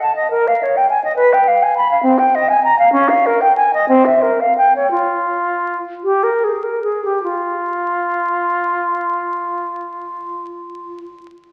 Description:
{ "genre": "classical, baroque-style fantasia for unaccompanied flute", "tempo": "47-71 BPM (dotted quarters)", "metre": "6/8", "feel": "rubato", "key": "F minor", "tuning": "A4 = 440 Hz", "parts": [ { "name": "concert flute", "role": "solo", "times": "0.0-11.0 s", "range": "C4 to B5", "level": "-16 LUFS", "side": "equal", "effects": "none" } ], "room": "wet recital hall reverb, RT60 1.5 s", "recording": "very old 78 rpm record, vinyl crackle", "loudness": "-16 LUFS", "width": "mono", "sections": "0.0-7.2 A section; 7.2-11.5 B section", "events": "slowing down 2.0-7.2", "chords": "none" }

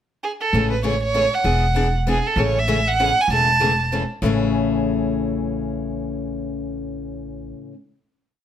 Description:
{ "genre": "acoustic string swing (jazz manouche)", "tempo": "195 BPM", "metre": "3/4", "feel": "swing 59% on 8ths", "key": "A major", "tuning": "A4 = 441 Hz", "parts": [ { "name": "warm violin", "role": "melody", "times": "0.2-3.9 s", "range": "G#4 to A5", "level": "-19 LUFS", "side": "right 3 dB", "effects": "none" }, { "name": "picked steel-string acoustic guitar", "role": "accompaniment", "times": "0.5-7.8 s", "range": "A2 to G#4", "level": "-23 LUFS", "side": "left 4 dB", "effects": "none" }, { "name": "upright bass", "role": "bass", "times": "0.5-7.5 s", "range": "E1 to A1", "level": "-24 LUFS", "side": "right 1 dB", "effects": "none" } ], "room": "moderate studio reverb, RT60 0.7 s", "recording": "none", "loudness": "-18 LUFS", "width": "side -9 dB against mid", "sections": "0.0-0.5 pickup bar; 0.5-4.2 A section; 4.2-6.1 final chord", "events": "none", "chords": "0.0 N.C.; 0.5 Amaj7; 1.5 E9; 2.4 Amaj7" }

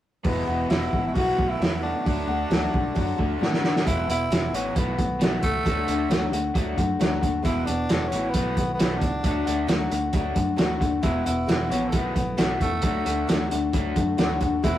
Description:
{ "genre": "folk rock and heartland rock", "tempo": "134 BPM", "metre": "4/4", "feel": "straight", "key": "E mixolydian", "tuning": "A4 = 441 Hz", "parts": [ { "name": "growling tenor saxophone", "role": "melody", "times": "0.2-14.8 s", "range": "A3 to F#4", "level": "-29 LUFS", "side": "right 1 dB", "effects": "none" }, { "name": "picked steel-string acoustic guitar", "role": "accompaniment", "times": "0.2-14.8 s", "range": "B2 to F#4", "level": "-27 LUFS", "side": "left 3 dB", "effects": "none" }, { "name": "crunchy overdriven guitar", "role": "riff", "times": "0.2-14.8 s", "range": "E2 to F#4", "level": "-33 LUFS", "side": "right 1 dB", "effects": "none" }, { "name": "vintage muted picked electric bass", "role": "bass", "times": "0.2-14.8 s", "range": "E1 to A2", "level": "-31 LUFS", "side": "equal", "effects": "none" }, { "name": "cloth-damped thuddy drum kit", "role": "drums", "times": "0.2-14.7 s", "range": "hi-hat, kick drum, snare drum", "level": "-25 LUFS", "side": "right 1 dB", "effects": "none" } ], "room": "moderate small room reverb, RT60 0.5 s", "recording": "rough rehearsal-room recording", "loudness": "-21 LUFS", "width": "side -12 dB against mid", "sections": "0.3-3.9 A section; 3.9-14.8 B section", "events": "drum fill 3.4-3.9", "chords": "0.3 Eadd9; 1.2 B7sus4; 2.1 D; 3.9 Eadd9; 4.8 B7sus4; 5.7 D; 7.4 Eadd9; 8.3 B7sus4; 9.2 D; 11.0 Eadd9; 11.9 B7sus4; 12.8 D" }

